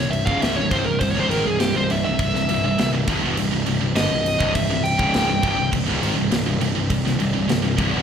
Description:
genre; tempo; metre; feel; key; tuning
heavy metal; 102 BPM; 4/4; straight; unclear; A4 = 440 Hz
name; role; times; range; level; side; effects
high-gain lead guitar; melody; 0.0-5.7 s; G4 to G5; -23 LUFS; equal; distortion, ping-pong delay
heavy high-gain guitar; riff; 0.0-8.0 s; C2 to Eb3; -26 LUFS; right 12 dB; distortion
high-gain distorted guitar; riff; 0.0-8.0 s; C2 to Eb3; -25 LUFS; left 8 dB; distortion
fuzz picked electric bass; bass; 0.0-8.0 s; C1 to Ab1; -24 LUFS; right 1 dB; overdrive
tight metal drum kit; drums; 0.1-7.9 s; crash cymbal, kick drum, snare drum; -25 LUFS; right 1 dB; none
room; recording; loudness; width
studio reverb; live gig heard through the venue's PA, club reverb; -18 LUFS; side -8 dB against mid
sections
0.0-8.0 A section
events
lead electric guitar solo 0.0-8.0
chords
0.0 C5

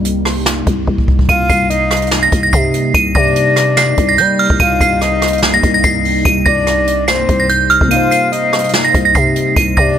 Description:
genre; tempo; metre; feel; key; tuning
hip hop, trap; 145 BPM; 4/4; half-time; C minor; A4 = 440 Hz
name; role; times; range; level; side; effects
deep dark ambient pad; sustained chords; 0.0-10.0 s; C3 to Eb4; -21 LUFS; left 1 dB; chorus, built-in reverb
growling 808-style bass; bass; 0.0-10.0 s; C2 to G3; -17 LUFS; equal; none
jazz brush drum kit; drums; 0.0-9.9 s; hi-hat, kick drum, rim click, snare drum; -16 LUFS; equal; none
metallic FM bell; melody; 1.3-10.0 s; F6 to Eb7; -14 LUFS; right 3 dB; chorus, phaser, digital delay
breathy flute-like synth lead; second line; 1.3-10.0 s; C5 to F5; -18 LUFS; left 3 dB; chorus, digital delay
warbly lo-fi synth keys; accompaniment; 7.8-10.0 s; C3 to C5; -20 LUFS; equal; chorus
room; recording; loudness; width
studio ambience; none; -10 LUFS; side -9 dB against mid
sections
0.0-1.3 A section; 1.3-10.0 B section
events
drum fill 0.9-1.3; kick muted 7.9-8.3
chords
0.0 Cm7

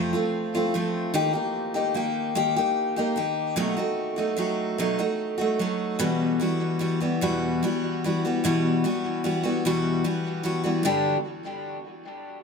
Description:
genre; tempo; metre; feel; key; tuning
rock; 50 BPM (dotted quarters); 6/8; straight; unclear; A4 = 439 Hz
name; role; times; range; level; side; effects
picked steel-string acoustic guitar; solo; 0.0-11.2 s; E2 to G4; -23 LUFS; left 1 dB; tape echo
room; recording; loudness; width
moderate echo chamber reverb, RT60 1.3 s; none; -23 LUFS; side -5 dB against mid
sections
0.0-6.0 A section; 6.0-10.8 B section; 10.8-12.4 C section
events
none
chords
0.0 F; 1.2 Eb; 3.6 B7; 6.0 Emadd9; 10.8 G

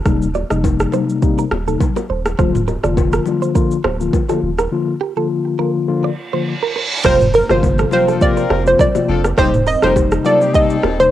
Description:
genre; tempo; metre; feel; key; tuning
afrobeats; 103 BPM; 4/4; swing 55% on 16ths; F mixolydian; A4 = 440 Hz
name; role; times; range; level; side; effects
mellow tine electric piano; accompaniment; 0.1-11.1 s; C3 to F4; -19 LUFS; left 5 dB; medium stereo tremolo, cassette tape
warm sub bass; bass; 0.1-11.1 s; D1 to G1; -21 LUFS; right 1 dB; none
afro-pop drum kit; drums; 0.1-11.1 s; crash cymbal, hi-hat, kick drum, rim click, shaker, toms; -18 LUFS; right 1 dB; cassette tape
congas and bongos; percussion; 0.1-11.0 s; none; -25 LUFS; left 8 dB; none
direct-recorded clean electric guitar; riff; 0.4-10.9 s; G4 to Eb5; -24 LUFS; right 9 dB; analog chorus, cassette tape, analog delay
reverse cymbal and impact; sound effects; 6.2-9.4 s; none; -25 LUFS; right 3 dB; none
warm horn section; second line; 7.0-11.0 s; C4 to C5; -24 LUFS; left 6 dB; cassette tape
hollow soft pad; sustained chords; 7.3-11.1 s; G3 to C5; -28 LUFS; right 3 dB; none
analog pluck; melody; 7.1-11.1 s; Bb4 to Eb5; -14 LUFS; right 1 dB; chorus, cassette tape
room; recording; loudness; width
light reverb; home recording on cassette; -13 LUFS; side -12 dB against mid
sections
0.0-7.0 A section; 7.0-11.1 B section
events
break 4.7-7.0; reverse cymbal 6.2-7.0; impact 7.0-9.4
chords
0.1 Eb6; 2.4 Bb/D; 7.0 Fsus4; 9.4 Eb6

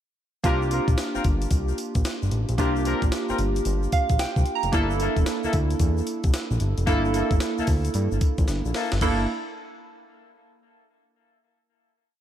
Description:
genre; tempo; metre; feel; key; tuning
R&B, new jack swing; 112 BPM; 4/4; swing 64% on 16ths; G dorian; A4 = 440 Hz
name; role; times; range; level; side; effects
warm analog keys; accompaniment; 0.4-9.3 s; Bb3 to Bb5; -26 LUFS; right 3 dB; chorus
mellow horn section; stabs; 0.4-9.2 s; Bb3 to Bb4; -32 LUFS; left 4 dB; tape echo
fat analog bass; bass; 0.4-9.3 s; E1 to G2; -25 LUFS; equal; none
breakbeat sampler-style drum kit; drums; 0.4-9.2 s; crash cymbal, hi-hat, kick drum, snare drum, tambourine; -25 LUFS; equal; none
tube shaker; percussion; 0.4-9.3 s; none; -44 LUFS; left 12 dB; none
room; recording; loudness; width
light reverb; dark, warm production; -21 LUFS; side -10 dB against mid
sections
0.4-9.0 chorus; 9.0-11.2 final chord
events
synth keys fill 3.7-4.7; drum fill 8.5-9.0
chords
0.4 C7sus4; 4.7 Gm69

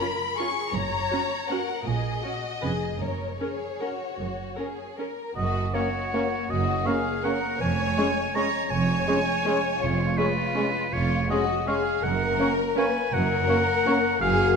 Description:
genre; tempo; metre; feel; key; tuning
classical; 142-176 BPM; 3/4; rubato; F# major; A4 = 440 Hz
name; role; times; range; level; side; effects
rich studio violin section; melody; 0.0-13.9 s; F#4 to C#6; -34 LUFS; left 5 dB; none
rich studio violin section; second line; 0.0-14.6 s; E#4 to C#5; -30 LUFS; left 4 dB; none
rich studio viola section; accompaniment; 0.0-13.9 s; G#3 to B4; -33 LUFS; right 1 dB; none
rich studio cello section; bass; 0.7-14.5 s; E#2 to A#2; -32 LUFS; right 3 dB; none
rich studio double bass section; bass; 0.7-14.5 s; E#1 to A#1; -31 LUFS; right 4 dB; none
bright oboe; second line; 5.4-14.6 s; B4 to A#5; -27 LUFS; equal; none
small flute group; second line; 5.7-13.9 s; C#6; -37 LUFS; left 1 dB; none
warm bassoon; accompaniment; 5.7-14.0 s; G#3 to A#3; -32 LUFS; right 1 dB; none
mellow French horn section; sustained chords; 5.7-14.6 s; G#3 to Gb4; -31 LUFS; left 4 dB; none
room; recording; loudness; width
moderate concert hall reverb, RT60 2.2 s; none; -23 LUFS; side -5 dB against mid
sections
0.0-5.4 A section; 5.4-14.6 A section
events
none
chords
0.0 C#7; 0.7 F#; 1.9 F#/A#; 2.6 C#7/E#; 3.0 F#; 7.6 C#/E#; 12.0 F#

